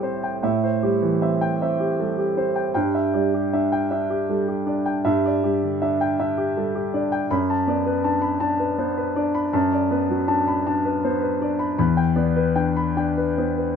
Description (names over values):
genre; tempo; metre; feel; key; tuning
neoclassical minimalist piano; 53 BPM (dotted quarters); 6/8; uneven beats, rubato; unclear; A4 = 440 Hz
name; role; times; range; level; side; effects
warm concert grand piano; solo; 0.0-13.8 s; E2 to B5; -20 LUFS; equal; none
room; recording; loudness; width
light reverb; minimal, uncompressed stereo recording; -20 LUFS; side -6 dB against mid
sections
0.0-13.8 A section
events
none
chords
0.0 Am7; 2.8 Em7/G; 7.3 Bm7/F#; 11.8 Em7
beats
| 0.42 1.59 | 2.75 3.90 | 5.05 6.20 | 7.31 8.41 | 9.53 10.66 | 11.78 12.97